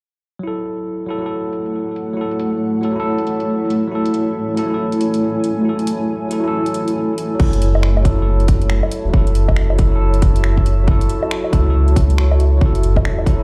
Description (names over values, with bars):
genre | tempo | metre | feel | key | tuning
future garage | 138 BPM | 4/4 | swing 62% on 16ths | F# minor | A4 = 440 Hz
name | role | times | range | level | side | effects
bell-like tine electric piano | accompaniment | 0.4-13.4 s | F#3 to A4 | -24 LUFS | equal | vintage 12-bit sampler grit, sidechain pumping, low-pass filter, tape echo
granular cloud pad | sustained chords | 1.6-13.4 s | A3 to A5 | -25 LUFS | equal | built-in reverb, sidechain pumping
garage drum kit | drums | 0.6-13.4 s | crash cymbal, finger snaps, hi-hat, woodblock | -29 LUFS | equal | low-pass filter on hats, low-pass filter on cymbals, low-pass filter on perc, low-pass filter on snare
dark detuned saw bass | bass | 7.4-13.4 s | E1 to C#2 | -17 LUFS | equal | sidechain pumping
electronic kick drum | drums | 7.4-13.4 s | none | -16 LUFS | equal | none
room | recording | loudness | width
little or no reverb | played on a big sound system in a bare room, large studio reverb | -17 LUFS | mono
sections
0.4-7.4 A section; 7.4-13.4 B section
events
filter sweep on drum 0.4-7.4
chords
0.4 F#m7